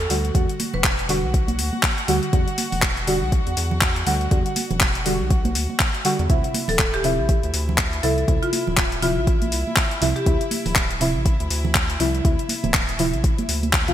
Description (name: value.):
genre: deep house.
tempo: 121 BPM.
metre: 4/4.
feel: swing 58% on 16ths.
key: unclear.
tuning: A4 = 443 Hz.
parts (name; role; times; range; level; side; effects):
marimba with hard mallets; melody; 0.0-1.1, 6.7-10.5 s; F4 to B4; -27 LUFS; left 1 dB; digital delay.
deep mellow chord stab; stabs; 0.0-13.9 s; C3 to F#4; -25 LUFS; right 1 dB; chorus, sidechain pumping, digital delay.
round analog bass; bass; 0.0-13.9 s; D1 to E2; -26 LUFS; equal; sidechain pumping.
deep house drum kit; drums; 0.0-13.9 s; handclaps, hi-hat; -23 LUFS; left 1 dB; overdrive, gated reverb.
warm symphonic violin section; texture; 0.0-13.9 s; E4 to F#5; -33 LUFS; left 1 dB; sidechain pumping.
electronic kick drum; drums; 0.3-13.9 s; none; -21 LUFS; equal; overdrive.
congas; percussion; 0.6-13.7 s; none; -29 LUFS; right 3 dB; none.
room: light reverb, digital ambience.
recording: bright 1980s-style digital production.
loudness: -18 LUFS.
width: side -11 dB against mid.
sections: 0.0-13.9 A section.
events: none.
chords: 0.0 Em9; 6.3 Dm9.